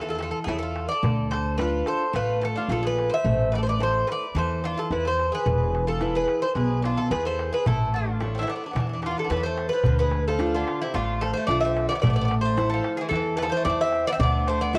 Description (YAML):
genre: greek folk, Greek bouzouki band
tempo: 109 BPM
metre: 4/4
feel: straight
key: D dorian sharp4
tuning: A4 = 438 Hz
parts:
  - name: Greek bouzouki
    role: melody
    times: 0.0-14.8 s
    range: D4 to E5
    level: -28 LUFS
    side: equal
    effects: none
  - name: Greek bouzouki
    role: second line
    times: 0.0-14.8 s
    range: C3 to C5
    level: -35 LUFS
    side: equal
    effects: none
  - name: picked steel-string acoustic guitar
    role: accompaniment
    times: 0.0-14.8 s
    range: B2 to C#5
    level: -32 LUFS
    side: equal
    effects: none
  - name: upright bass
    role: bass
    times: 0.0-14.8 s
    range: E1 to E2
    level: -31 LUFS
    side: equal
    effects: none
  - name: darbuka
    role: percussion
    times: 0.2-14.8 s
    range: none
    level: -31 LUFS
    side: equal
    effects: none
room: light reverb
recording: worn, warbling old tape, cassette tape, warbly pitch drift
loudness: -25 LUFS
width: mono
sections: 0.0-9.8 A section; 9.8-14.8 A section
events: none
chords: 0.0 A; 1.0 Dm; 3.2 Am; 5.5 E; 7.7 A; 9.8 Dm; 12.0 Am; 14.2 N.C.